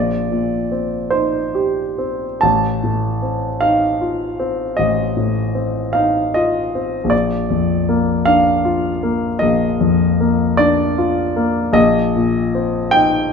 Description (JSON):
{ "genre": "classical, romantic nocturne for solo piano", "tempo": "45-53 BPM (dotted quarters)", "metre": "12/8", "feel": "rubato", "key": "Bb major", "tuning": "A4 = 439 Hz", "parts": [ { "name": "warm grand piano", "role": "solo", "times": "0.0-13.3 s", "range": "A1 to A5", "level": "-15 LUFS", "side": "left 1 dB", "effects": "none" } ], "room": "wet stone room reverb, RT60 1.3 s", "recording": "none", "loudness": "-15 LUFS", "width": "side -6 dB against mid", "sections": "0.0-13.3 A section", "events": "none", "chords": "0.0 Cm7/Bb; 2.4 F7/A; 7.1 Bb; 11.8 Cm7/Bb" }